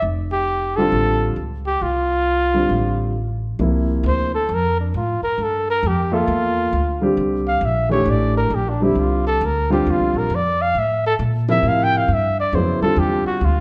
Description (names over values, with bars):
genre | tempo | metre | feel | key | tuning
modal jazz | 134 BPM | 4/4 | swing 65% on 8ths | C mixolydian | A4 = 439 Hz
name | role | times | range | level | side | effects
mellow trumpet | melody | 0.0-13.6 s | D4 to G5 | -22 LUFS | equal | none
upright bass | bass | 0.0-13.6 s | F1 to Bb2 | -24 LUFS | equal | none
warm grand piano | accompaniment | 0.8-13.6 s | C3 to E5 | -23 LUFS | equal | none
room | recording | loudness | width
moderate large studio reverb, RT60 1.3 s | band playing live in one room, nothing above 10.6 kHz | -19 LUFS | mono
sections
0.0-3.6 A section; 3.6-13.6 B section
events
trumpet solo 3.6-13.6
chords
0.0 Dm; 3.6 C9sus4; 10.7 Dm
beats
| 0.03 0.47 0.92 1.37 | 1.81 2.26 2.71 3.15 | 3.60 4.05 4.49 4.94 | 5.39 5.83 6.28 6.72 | 7.17 7.62 8.06 8.51 | 8.96 9.40 9.85 10.29 | 10.74 11.19 11.64 12.08 | 12.53 12.98 13.42